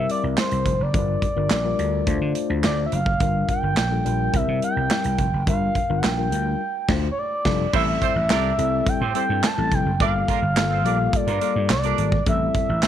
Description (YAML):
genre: early-eighties boogie funk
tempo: 106 BPM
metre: 4/4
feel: straight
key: G dorian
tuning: A4 = 440 Hz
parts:
  - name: expressive synth lead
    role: melody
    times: 0.0-12.9 s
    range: C5 to A5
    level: -24 LUFS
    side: equal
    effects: chorus, slapback echo
  - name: mellow tine electric piano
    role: accompaniment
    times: 0.0-12.9 s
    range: G3 to C5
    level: -28 LUFS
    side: left 9 dB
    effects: none
  - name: vintage slap bass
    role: bass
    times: 0.0-12.9 s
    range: F1 to D3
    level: -24 LUFS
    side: right 1 dB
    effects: none
  - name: modern studio drum kit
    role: drums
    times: 0.1-12.9 s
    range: crash cymbal, handclaps, hi-hat, kick drum, snare drum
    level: -25 LUFS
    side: right 1 dB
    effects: none
  - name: group handclap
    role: percussion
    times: 0.4-12.9 s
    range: none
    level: -32 LUFS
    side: right 13 dB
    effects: none
  - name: clear horn section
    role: second line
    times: 7.7-12.1 s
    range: Bb3 to E5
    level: -28 LUFS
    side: right 12 dB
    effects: none
room: light reverb, small room ambience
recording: 1960s-style stereo with parts hard left and right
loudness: -19 LUFS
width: side -10 dB against mid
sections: 0.0-7.7 A section; 7.7-12.9 B section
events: band accent 6.6-7.7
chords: 0.0 C7; 0.9 Gm7; 2.1 Dm7; 3.2 Gm7; 4.3 C7; 5.5 Gm7; 6.6 Dm7; 7.2 F69; 7.7 Am7; 10.0 Gm9; 12.3 Am7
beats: 0.38 | 0.94 1.51 2.07 2.64 | 3.21 3.77 4.34 4.90 | 5.47 6.04 6.60 7.17 | 7.74 8.30 8.87 9.43 | 10.00 10.56 11.13 11.70 | 12.26 12.83